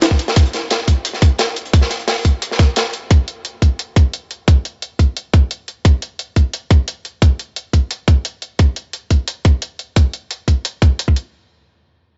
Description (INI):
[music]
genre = liquid drum and bass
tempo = 175 BPM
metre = 4/4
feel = straight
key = none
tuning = none
[part]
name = crunchy breakbeat drum kit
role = drums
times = 0.0-3.0 s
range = hi-hat, snare drum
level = -22 LUFS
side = equal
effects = high-pass filter on hats, high-pass filter on snare, high-pass filter on room
[part]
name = jungle sampler-style drum kit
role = drums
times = 0.0-11.2 s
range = hi-hat, snare drum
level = -25 LUFS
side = equal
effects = none
[part]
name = electronic kick drum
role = drums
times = 0.1-11.1 s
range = none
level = -13 LUFS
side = equal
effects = none
[sound]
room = small room ambience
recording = nothing above 7.8 kHz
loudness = -17 LUFS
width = mono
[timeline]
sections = 0.0-11.3 A section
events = none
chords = none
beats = 0.02 | 0.36 0.71 1.05 1.39 | 1.73 2.08 2.42 2.76 | 3.11 3.45 3.79 4.13 | 4.48 4.82 5.16 5.51 | 5.85 6.19 6.53 6.88 | 7.22 7.56 7.91 8.25 | 8.59 8.93 9.28 9.62 | 9.96 10.31 10.65 10.99